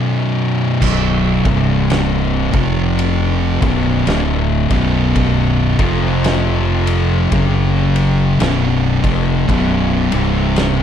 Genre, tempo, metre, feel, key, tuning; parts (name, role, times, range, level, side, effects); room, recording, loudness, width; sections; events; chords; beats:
stoner and doom metal; 55 BPM; 4/4; swing 58% on 8ths; A4 = 441 Hz
thick fuzz guitar; riff; 0.0-10.8 s; B1 to F#3; -17 LUFS; left 7 dB; distortion
thick fuzz guitar; riff; 0.0-10.8 s; B1 to F#3; -18 LUFS; right 8 dB; distortion
growling fingered electric bass; bass; 0.8-10.8 s; B0 to F#1; -19 LUFS; equal; overdrive
oversized low-tuned drum kit; drums; 0.8-10.8 s; crash cymbal, kick drum, ride cymbal, snare drum; -21 LUFS; equal
light reverb, studio reverb; dark, warm production; -13 LUFS; side -9 dB against mid
0.8-10.8 A section
break 0.0-0.8
0.0 B5; 1.4 C5; 2.4 F5; 3.5 Bm; 5.7 F5; 7.3 F#5; 8.4 B5; 10.0 C5
| 0.82 1.90 2.98 4.07 | 5.15 6.24 7.32 8.40 | 9.48 10.57